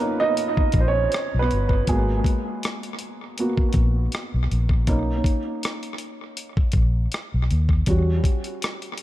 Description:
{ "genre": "R&B, neo-soul", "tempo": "80 BPM", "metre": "4/4", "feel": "swing 54% on 16ths", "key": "B major", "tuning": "A4 = 439 Hz", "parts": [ { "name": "dark baby grand piano", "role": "accompaniment", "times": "0.0-9.0 s", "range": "G3 to E5", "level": "-25 LUFS", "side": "right 2 dB", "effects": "tape echo" }, { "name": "dusty soul sampler-style drum kit", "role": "drums", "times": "0.4-9.0 s", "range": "hi-hat, kick drum, rim click", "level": "-23 LUFS", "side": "equal", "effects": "tape echo" }, { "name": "vintage muted fingered electric bass", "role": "bass", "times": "0.6-8.2 s", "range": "G1 to E2", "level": "-21 LUFS", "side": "equal", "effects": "none" } ], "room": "digital ambience", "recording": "echo-heavy mix", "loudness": "-20 LUFS", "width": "side -14 dB against mid", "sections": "0.0-9.0 A section", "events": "grand piano solo 0.0-9.0", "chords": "0.0 Bmaj7; 1.9 G#m9; 4.9 Bmaj7; 7.9 Em6" }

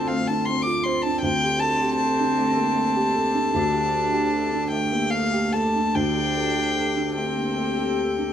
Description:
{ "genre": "neoclassical piano and strings", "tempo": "48-53 BPM (dotted quarters)", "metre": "6/8", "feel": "rubato", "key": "unclear", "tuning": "A4 = 442 Hz", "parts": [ { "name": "warm violin", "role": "melody", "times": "0.0-8.3 s", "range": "F5 to D6", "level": "-24 LUFS", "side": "left 1 dB", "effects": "none" }, { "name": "warm cello", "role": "second line", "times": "0.0-8.3 s", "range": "A3 to D4", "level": "-27 LUFS", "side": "right 2 dB", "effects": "none" }, { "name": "dark upright piano", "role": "accompaniment", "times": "0.0-8.3 s", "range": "D2 to C5", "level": "-26 LUFS", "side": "equal", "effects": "none" }, { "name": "warbly tape-like pad", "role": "sustained chords", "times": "0.0-8.3 s", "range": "C4 to A4", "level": "-31 LUFS", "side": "left 2 dB", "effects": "chorus, built-in reverb, phaser" } ], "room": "moderate stone room reverb, RT60 1.1 s", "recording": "band playing live in one room", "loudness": "-20 LUFS", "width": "side -9 dB against mid", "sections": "0.0-8.3 A section", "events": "none", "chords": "0.0 Dm7; 1.2 D7sus4" }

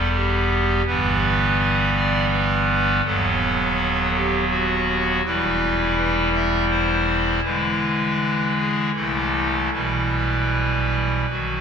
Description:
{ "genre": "classical, chorale-style piece for pipe organ", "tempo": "81 BPM", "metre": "3/4", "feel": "uneven beats, rubato", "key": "E minor from 3.1 s", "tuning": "A4 = 440 Hz", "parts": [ { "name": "pipe organ, clarinet reed", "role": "solo", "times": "0.0-11.6 s", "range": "D#1 to E5", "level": "-18 LUFS", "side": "equal", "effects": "none" } ], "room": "wet church reverb, RT60 3.3 s", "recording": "minimal, uncompressed stereo recording", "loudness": "-18 LUFS", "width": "side -6 dB against mid", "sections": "0.0-11.6 A section", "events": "none", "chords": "0.0 Em; 0.9 Em/G; 3.1 B7/D#; 5.2 Em; 7.4 E7/D; 8.9 Am/C; 9.7 Em/B" }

